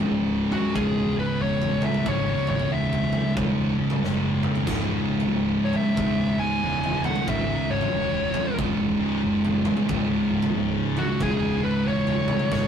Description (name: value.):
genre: stoner and doom metal.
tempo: 92 BPM.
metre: 4/4.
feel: swing 63% on 8ths.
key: C# minor.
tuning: A4 = 440 Hz.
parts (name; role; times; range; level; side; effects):
thick fuzz guitar; riff; 0.0-12.7 s; C#2 to C#3; -26 LUFS; left 4 dB; distortion.
thick fuzz guitar; riff; 0.0-12.7 s; C#2 to C#3; -26 LUFS; right 5 dB; distortion.
growling fingered electric bass; bass; 0.0-12.7 s; C#1 to G#1; -32 LUFS; equal; overdrive.
fuzz lead guitar; melody; 0.5-12.7 s; F#4 to G#5; -28 LUFS; left 2 dB; distortion.
big rock drum kit; drums; 0.5-12.7 s; kick drum, snare drum, splash cymbal, toms; -30 LUFS; equal; none.
room: moderate stone room reverb, RT60 1.1 s.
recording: rough rehearsal-room recording, warm saturation.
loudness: -21 LUFS.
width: side -8 dB against mid.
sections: 0.0-12.7 A section.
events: drum fill 4.0-4.7, 12.5.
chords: 0.0 C#m.